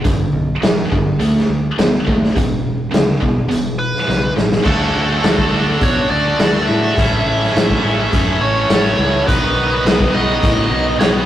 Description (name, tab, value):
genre	classic rock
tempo	104 BPM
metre	4/4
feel	straight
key	unclear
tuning	A4 = 440 Hz
part	tight distorted guitar	riff	0.0-11.3 s	E2 to B4	-18 LUFS	equal	distortion
part	modern bright picked electric bass	bass	0.0-11.2 s	E1 to B2	-21 LUFS	equal	none
part	raw garage drum kit	drums	0.0-11.1 s	crash cymbal, hi-hat, kick drum, snare drum	-17 LUFS	equal	none
part	biting lead guitar	melody	3.8-11.1 s	A4 to E5	-20 LUFS	equal	overdrive
room	moderate small room reverb, RT60 0.5 s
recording	rough rehearsal-room recording, tube saturation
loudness	-13 LUFS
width	side -12 dB against mid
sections	0.0-4.7 A section; 4.7-11.3 B section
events	drum fill 4.1-4.7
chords	0.1 G; 1.2 D5; 2.4 E5; 4.7 D; 7.0 A; 9.3 B